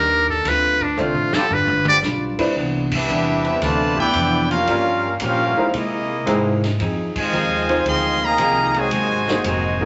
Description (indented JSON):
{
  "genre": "jazz, big band swing",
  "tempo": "113 BPM",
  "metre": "4/4",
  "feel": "swing 69% on 8ths",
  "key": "unclear",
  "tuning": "A4 = 440 Hz",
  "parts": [
    { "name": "trumpet with metal mute", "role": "melody", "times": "0.0-2.0 s", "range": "D4 to D5", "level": "-20 LUFS", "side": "equal", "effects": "none" },
    { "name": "archtop guitar, miked and amplified", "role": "accompaniment", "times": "0.0-9.8 s", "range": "G2 to B4", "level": "-28 LUFS", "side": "equal", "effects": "none" },
    { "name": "upright bass", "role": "bass", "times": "0.0-9.9 s", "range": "F1 to C3", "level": "-29 LUFS", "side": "equal", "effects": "none" },
    { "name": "vintage drum kit", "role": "drums", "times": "0.3-9.9 s", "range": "crash cymbal, hi-hat, kick drum, ride cymbal, snare drum, toms", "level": "-31 LUFS", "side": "equal", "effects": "none" },
    { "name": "warm baby grand piano", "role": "accompaniment", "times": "1.0-9.9 s", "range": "G3 to C5", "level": "-26 LUFS", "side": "equal", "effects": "none" },
    { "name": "dark trombone section", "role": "sustained chords", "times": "1.3-8.9 s", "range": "E3 to B4", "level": "-31 LUFS", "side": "equal", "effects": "none" },
    { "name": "clear trumpet section", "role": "melody", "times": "2.9-9.9 s", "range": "Bb3 to C6", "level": "-22 LUFS", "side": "equal", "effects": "none" },
    { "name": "bright trombone section", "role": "second line", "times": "2.9-9.9 s", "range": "C3 to G4", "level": "-28 LUFS", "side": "equal", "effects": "none" }
  ],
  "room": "wet large studio reverb, RT60 1.5 s",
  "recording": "nothing above 7.9 kHz",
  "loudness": "-19 LUFS",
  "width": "mono",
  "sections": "0.0-2.6 A section; 2.6-9.9 B section",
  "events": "muted trumpet solo 0.0-2.6; drum fill 1.0-2.0; band accent 2.8, 7.1",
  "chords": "0.4 Dm7; 1.5 G7; 2.6 Cmaj9; 4.7 Gm7b5; 5.7 C7alt; 6.8 Fm7; 8.9 Ab9"
}